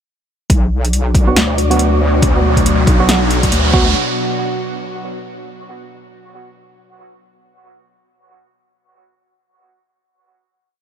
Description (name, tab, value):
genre	deep dubstep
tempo	139 BPM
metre	4/4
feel	swing 60% on 16ths, half-time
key	B minor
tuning	A4 = 440 Hz
part	bowed-like drone	sustained chords	1.0-3.9 s	B2 to F#4	-21 LUFS	equal	built-in reverb
part	wobble bass	bass	0.5-3.9 s	B1 to D2	-15 LUFS	equal	chorus
part	deep house drum kit	drums	0.5-3.6 s	hi-hat, snare drum	-18 LUFS	equal	overdrive
part	electronic kick drum	drums	0.5-3.8 s	none	-14 LUFS	equal	overdrive
part	riser	sound effects	1.3-4.0 s	none	-22 LUFS	right 3 dB	none
part	wind-like tuned noise texture	texture	1.0-4.0 s	D4 to D5	-24 LUFS	left 4 dB	built-in reverb
part	percussive organ stab	stabs	1.3-3.9 s	F#3 to F#4	-22 LUFS	right 4 dB	chorus, dub echo
room	light reverb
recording	none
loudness	-12 LUFS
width	side -8 dB against mid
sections	0.5-4.0 build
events	build-up 0.5-4.0; filter sweep on synth drone 0.5-4.0; riser 1.3-4.0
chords	0.5 B5